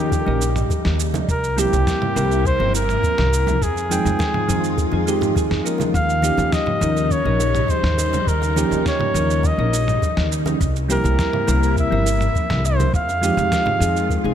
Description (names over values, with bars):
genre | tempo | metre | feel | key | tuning
sunset chillout | 103 BPM | 4/4 | straight | F minor | A4 = 441 Hz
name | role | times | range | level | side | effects
breathy flugelhorn | melody | 0.0-14.3 s | G4 to F5 | -22 LUFS | equal | ping-pong delay
soft electric-piano-like synth keys | accompaniment | 0.0-14.3 s | F3 to G5 | -24 LUFS | moving between left 3 dB and right 3 dB | chorus, auto-pan, ping-pong delay
soft string machine | sustained chords | 0.0-14.3 s | C3 to F4 | -27 LUFS | equal | phaser, ensemble chorus
upright bass | bass | 0.0-14.3 s | G1 to F2 | -21 LUFS | equal | none
dusty soul sampler-style drum kit | drums | 0.1-14.2 s | shaker, snare drum, toms | -27 LUFS | right 2 dB | overdrive
electronic kick drum | drums | 0.1-14.2 s | none | -23 LUFS | equal | none
bongos and congas | percussion | 0.1-14.3 s | none | -29 LUFS | right 4 dB | none
room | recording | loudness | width
light reverb, studio reverb | faint mains hum | -17 LUFS | side -9 dB against mid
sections
0.0-14.3 A section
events
none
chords
0.0 Eb7; 1.3 C7; 3.6 Fm7; 5.9 Eb7; 10.6 C7; 12.9 Fm7